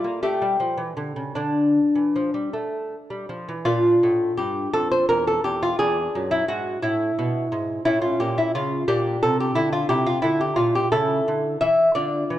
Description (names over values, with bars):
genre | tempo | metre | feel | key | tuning
classical, baroque-style dance for lute | 52-60 BPM (dotted quarters) | 6/8 | rubato | unclear | A4 = 439 Hz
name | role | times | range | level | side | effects
lute | solo | 0.0-12.4 s | E2 to E5 | -20 LUFS | equal | none
room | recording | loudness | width
moderate recital hall reverb, RT60 1.8 s | dark, warm production | -20 LUFS | side -13 dB against mid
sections
0.0-3.7 A section; 3.7-12.4 A section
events
none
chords
0.2 A7; 1.4 Dm; 3.7 Bb; 5.8 E7; 7.9 A; 8.9 Bb; 9.9 C; 10.9 A/C#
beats
0.24 | 1.37 2.53 | 3.66 4.73 | 5.80 6.83 | 7.86 8.89 | 9.90 10.92 | 11.95